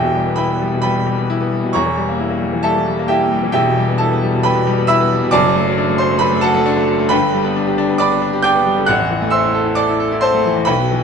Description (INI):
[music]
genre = classical, virtuoso piano study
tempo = 134 BPM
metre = 4/4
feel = rubato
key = E minor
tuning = A4 = 440 Hz
[part]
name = clear grand piano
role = solo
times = 0.0-11.0 s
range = E1 to G6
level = -13 LUFS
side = equal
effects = none
[sound]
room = moderate stone room reverb, RT60 1.1 s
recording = nothing above 10.3 kHz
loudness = -13 LUFS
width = side -6 dB against mid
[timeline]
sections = 0.0-11.0 A section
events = none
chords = 0.0 Em; 1.8 Edim7; 3.6 Em; 5.3 D/F#; 7.1 G; 8.9 Am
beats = 0.39 0.85 1.30 | 1.75 2.20 2.65 3.10 | 3.56 4.01 4.46 4.90 | 5.34 5.79 6.22 6.67 | 7.11 7.56 8.00 8.45 | 8.89 9.33 9.78 10.23 | 10.67